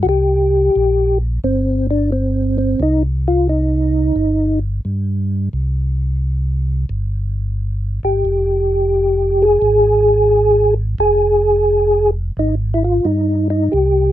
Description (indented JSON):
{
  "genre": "jazz",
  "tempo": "88 BPM",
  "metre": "4/4",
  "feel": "swing 68% on 8ths",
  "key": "unclear",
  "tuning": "A4 = 441 Hz",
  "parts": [
    { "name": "percussive tonewheel organ", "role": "melody", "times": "0.0-14.1 s", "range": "C4 to Ab4", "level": "-14 LUFS", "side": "equal", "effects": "slow rotary speaker, chorus vibrato" },
    { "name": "mellow tonewheel organ", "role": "bass", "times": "0.0-14.1 s", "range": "F1 to G2", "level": "-18 LUFS", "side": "equal", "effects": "overdrive, chorus vibrato, slow rotary speaker" }
  ],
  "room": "little or no reverb",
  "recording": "minimal, uncompressed stereo recording",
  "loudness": "-14 LUFS",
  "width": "side -13 dB against mid",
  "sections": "0.0-14.1 A section",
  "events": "none",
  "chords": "0.0 C7(no3); 8.3 Fm"
}